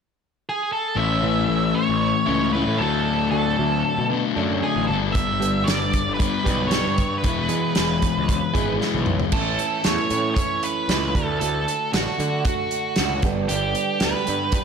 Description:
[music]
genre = quiet-loud alternative rock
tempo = 115 BPM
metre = 4/4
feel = straight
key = A major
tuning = A4 = 440 Hz
[part]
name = octave-fuzz lead guitar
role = melody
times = 0.5-14.6 s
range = F#4 to E5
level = -25 LUFS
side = right 2 dB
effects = distortion, digital delay
[part]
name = overdriven semi-hollow guitar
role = riff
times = 1.0-9.3 s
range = G2 to E4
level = -24 LUFS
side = left 9 dB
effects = none
[part]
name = fuzz picked electric bass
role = bass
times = 1.0-14.5 s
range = E1 to D3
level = -27 LUFS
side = equal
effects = overdrive
[part]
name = fingerpicked plugged-in swing-style acoustic guitar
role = arpeggios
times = 1.2-14.6 s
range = G2 to G#4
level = -28 LUFS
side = right 6 dB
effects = slapback echo
[part]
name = loose indie drum kit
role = drums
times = 5.2-14.6 s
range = crash cymbal, hi-hat, kick drum, snare drum, toms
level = -24 LUFS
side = right 1 dB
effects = none
[sound]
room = moderate lush hall reverb, RT60 1.7 s, studio reverb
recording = big arena sound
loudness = -19 LUFS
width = side -6 dB against mid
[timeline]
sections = 1.0-9.3 A section; 9.3-14.6 B section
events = drum fill 8.8-9.3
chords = 0.0 N.C.; 1.0 A; 2.8 D; 4.9 G; 7.2 E; 9.3 A; 11.2 D; 13.2 G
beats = 0.45 | 0.97 1.50 2.02 2.54 | 3.06 3.59 4.11 4.63 | 5.15 5.68 6.20 6.72 | 7.24 7.77 8.29 8.81 | 9.33 9.85 10.37 10.89 | 11.42 11.94 12.46 12.98 | 13.50 14.02 14.54

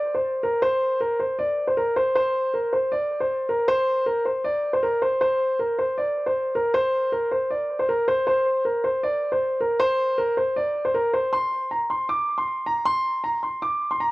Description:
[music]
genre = hip hop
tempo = 157 BPM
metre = 4/4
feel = half-time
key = unclear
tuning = A4 = 440 Hz
[part]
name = warm grand piano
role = solo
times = 0.0-14.1 s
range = Bb4 to D6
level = -21 LUFS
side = equal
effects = cassette tape, tape echo
[sound]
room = light reverb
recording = home recording on cassette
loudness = -21 LUFS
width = side -20 dB against mid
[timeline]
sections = 0.0-11.3 A section; 11.3-14.1 B section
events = none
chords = none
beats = 0.24 | 0.62 1.01 1.39 1.77 | 2.15 2.54 2.92 3.30 | 3.68 4.07 4.45 4.83 | 5.21 5.59 5.97 6.36 | 6.74 7.12 7.50 7.89 | 8.27 8.65 9.03 9.41 | 9.80 10.18 10.56 10.94 | 11.33 11.71 12.09 12.47 | 12.85 13.24 13.62 14.00

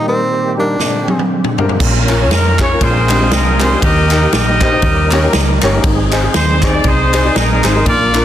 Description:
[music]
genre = uptempo gospel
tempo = 119 BPM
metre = 4/4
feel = swing 56% on 8ths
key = Eb major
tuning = A4 = 437 Hz
[part]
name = breathy tenor saxophone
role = melody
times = 0.0-1.3 s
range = C4 to D4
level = -18 LUFS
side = right 1 dB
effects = none
[part]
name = warm baby grand piano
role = accompaniment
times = 0.0-8.2 s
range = Ab2 to D5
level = -18 LUFS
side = left 3 dB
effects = none
[part]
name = tonewheel organ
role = sustained chords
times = 0.0-8.2 s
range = Bb2 to G5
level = -21 LUFS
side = right 2 dB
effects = fast rotary speaker, chorus vibrato
[part]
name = swinging big-band drum kit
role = drums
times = 0.8-8.2 s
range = crash cymbal, kick drum, ride cymbal, snare drum, toms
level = -16 LUFS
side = equal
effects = none
[part]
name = hollow-body short-scale fingered electric bass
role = bass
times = 1.8-8.2 s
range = G1 to F2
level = -15 LUFS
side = equal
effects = none
[part]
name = group handclap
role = percussion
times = 2.1-8.2 s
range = none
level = -24 LUFS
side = right 2 dB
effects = none
[part]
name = clear horn section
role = melody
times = 2.3-8.2 s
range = Eb4 to Eb5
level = -16 LUFS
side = equal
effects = none
[sound]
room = light reverb, small room ambience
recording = dense, heavily limited modern master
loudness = -10 LUFS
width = side -11 dB against mid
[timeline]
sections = 0.0-1.8 A section; 1.8-8.2 B section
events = break 0.0-1.8; drum fill 0.8-1.8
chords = 0.0 Eb/Bb; 0.8 Bb13; 1.8 Bbm; 2.8 Bb13; 3.8 Eb; 4.8 Eb7; 5.8 Ab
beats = 0.29 0.79 1.30 | 1.80 2.31 2.81 3.32 | 3.82 4.33 4.83 5.34 | 5.84 6.35 6.85 7.36 | 7.86

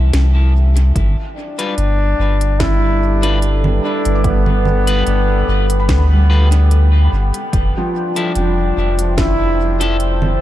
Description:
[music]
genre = ambient dub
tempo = 73 BPM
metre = 4/4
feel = swing 54% on 16ths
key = G mixolydian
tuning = A4 = 441 Hz
[part]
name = deep dark ambient pad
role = sustained chords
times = 0.0-10.4 s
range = G3 to A5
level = -24 LUFS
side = right 1 dB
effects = chorus, built-in reverb
[part]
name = felt-muted upright piano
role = arpeggios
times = 0.0-10.4 s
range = E3 to D6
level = -25 LUFS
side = left 1 dB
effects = ensemble chorus, diffuse ambient delay
[part]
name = soft dub sub bass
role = bass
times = 0.0-10.4 s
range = F1 to D2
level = -14 LUFS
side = equal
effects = none
[part]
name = organic electronic drum kit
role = drums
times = 0.1-10.4 s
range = congas, hi-hat, snare drum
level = -26 LUFS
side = right 2 dB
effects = dub echo
[part]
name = electronic kick drum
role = drums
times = 1.0-9.4 s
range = none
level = -19 LUFS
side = equal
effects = none
[part]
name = clear trombone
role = melody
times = 1.4-10.0 s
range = B3 to E4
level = -20 LUFS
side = equal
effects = diffuse ambient delay
[part]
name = electric guitar at the edge of break-up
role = stabs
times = 1.6-10.0 s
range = F3 to B4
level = -27 LUFS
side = left 3 dB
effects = dub echo
[sound]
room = light reverb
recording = none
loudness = -12 LUFS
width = side -13 dB against mid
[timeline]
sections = 1.0-10.4 A section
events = none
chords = 0.0 Fmaj7; 1.0 G; 7.5 Fmaj7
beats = 0.14 | 0.96 1.78 2.60 3.42 | 4.25 5.07 5.89 6.71 | 7.53 8.36 9.18 10.00

